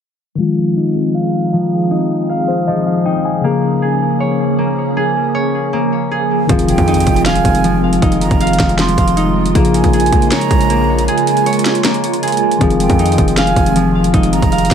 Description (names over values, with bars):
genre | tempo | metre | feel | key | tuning
hip hop, trap | 157 BPM | 4/4 | half-time | F minor | A4 = 440 Hz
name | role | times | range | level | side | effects
mellow tine electric piano | accompaniment | 0.4-14.7 s | Db3 to Ab5 | -18 LUFS | left 5 dB | low-pass filter
hollow soft pad | sustained chords | 0.4-14.7 s | Db3 to Ab4 | -20 LUFS | right 2 dB | ensemble chorus, low-pass filter
concert harp | arpeggios | 0.4-14.7 s | F3 to F5 | -16 LUFS | right 1 dB | low-pass filter, ping-pong delay
distorted 808-style bass | bass | 6.5-14.7 s | F1 to F2 | -18 LUFS | equal | distortion
trap drum kit | drums | 6.5-14.7 s | hi-hat, kick drum, snare drum | -17 LUFS | equal | none
impact | sound effects | 6.6-8.0 s | none | -25 LUFS | equal | none
breathy concert flute | second line | 6.7-14.7 s | G5 to C6 | -21 LUFS | right 7 dB | ping-pong delay
room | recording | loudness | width
light reverb | none | -12 LUFS | side -8 dB against mid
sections
0.4-6.5 A section; 6.5-14.7 B section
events
filter sweep 0.4-6.5; tine electric piano fill 2.3-3.4; impact 6.5-8.0; break 11.1-12.6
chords
0.4 Fm7; 3.4 Bbm7; 6.5 Fm7; 9.6 Bbm7; 12.6 Fm7